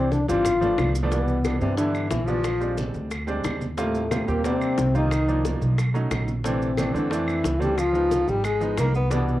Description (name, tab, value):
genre	Afro-Cuban jazz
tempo	180 BPM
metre	4/4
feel	straight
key	C major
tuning	A4 = 441 Hz
part	mellow trombone	melody	0.0-9.4 s	A3 to Cb5	-24 LUFS	left 2 dB	cassette tape
part	clear baby grand piano	accompaniment	0.0-9.3 s	E3 to G4	-29 LUFS	right 3 dB	cassette tape
part	upright bass	bass	0.0-9.4 s	G1 to G2	-26 LUFS	equal	none
part	bongos	percussion	0.1-9.3 s	none	-34 LUFS	left 6 dB	none
part	congas	percussion	0.1-9.4 s	none	-34 LUFS	equal	none
part	maracas	percussion	0.1-9.4 s	none	-43 LUFS	right 5 dB	none
part	claves	percussion	0.5-8.9 s	none	-37 LUFS	right 1 dB	none
part	breathy baritone saxophone	second line	1.1-9.4 s	A2 to Cb4	-32 LUFS	right 2 dB	cassette tape
room	moderate small room ambience, RT60 0.5 s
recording	home recording on cassette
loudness	-21 LUFS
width	side -15 dB against mid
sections	0.0-1.1 A section; 1.1-9.4 B section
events	trombone solo 0.0-1.1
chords	0.5 G7; 1.1 Cmaj9; 2.4 Bb13; 3.8 Eb69; 5.1 Cm11; 5.8 B9; 6.4 Bbmaj9#11; 7.8 Db9